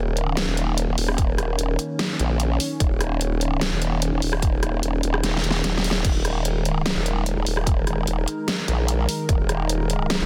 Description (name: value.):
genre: heavy wobble dubstep.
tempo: 148 BPM.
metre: 4/4.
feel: half-time.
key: unclear.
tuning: A4 = 441 Hz.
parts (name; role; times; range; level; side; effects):
lush unison pad; sustained chords; 0.0-10.3 s; Eb3 to Bb4; -30 LUFS; equal; chorus, sidechain pumping.
formant-sweep wobble bass; bass; 0.0-10.3 s; Eb1 to Bb1; -26 LUFS; equal; chorus, overdrive.
dubstep drum kit; drums; 0.2-10.2 s; crash cymbal, hi-hat, rim click, snare drum; -28 LUFS; equal; none.
electronic kick drum; drums; 1.2-9.4 s; none; -24 LUFS; equal; none.
room: light reverb, digital ambience.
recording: dense, heavily limited modern master.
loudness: -23 LUFS.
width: mono.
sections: 0.0-10.3 A section.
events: kick drops out 5.2-6.0; drum fill 5.2-6.0.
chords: 0.0 Eb5.